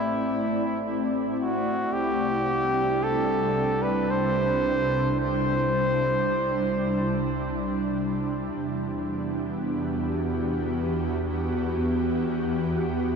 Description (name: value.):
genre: ambient.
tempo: free time.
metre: none.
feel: none.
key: unclear.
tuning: A4 = 441 Hz.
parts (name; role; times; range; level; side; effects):
warm flugelhorn; melody; 0.0-7.4 s; E4 to C5; -27 LUFS; equal; tape echo.
ethereal airy pad; sustained chords; 0.0-13.2 s; C3 to D5; -26 LUFS; equal; ensemble chorus, built-in reverb.
bright studio double bass section; bass; 0.0-13.2 s; A1 to E2; -35 LUFS; equal; none.
room: wet huge ambient reverb, RT60 8.1 s.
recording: worn, warbling old tape, cassette tape, warbly pitch drift.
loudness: -23 LUFS.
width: side -6 dB against mid.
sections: 0.0-13.2 A section.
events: fade-in on double bass section 0.0-13.2.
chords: 0.0 Am; 1.9 C; 8.5 Em7.